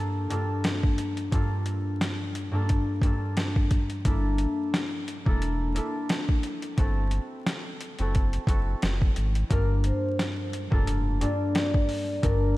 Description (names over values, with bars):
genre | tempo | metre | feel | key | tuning
hip hop, boom-bap hip-hop | 88 BPM | 4/4 | swing 55% on 16ths | G dorian | A4 = 440 Hz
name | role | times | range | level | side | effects
concert harp | accompaniment | 0.0-12.6 s | G2 to Bb4 | -28 LUFS | left 1 dB | cassette tape
boom bap sampler-style drum kit | drums | 0.3-12.4 s | hi-hat, kick drum, snare drum | -26 LUFS | equal | none
warm sub bass | bass | 4.1-12.6 s | E1 to G#1 | -27 LUFS | equal | none
vibraphone with soft mallets | melody | 9.5-12.5 s | Bb4 to D5 | -32 LUFS | left 1 dB | analog delay
room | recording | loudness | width
light reverb, small room ambience | vinyl crackle | -24 LUFS | side -18 dB against mid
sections
0.0-9.5 A section; 9.5-12.6 B section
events
break 0.0-4.1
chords
0.0 Gm7; 4.1 Gm69; 6.8 F#m7b5; 9.5 Gm7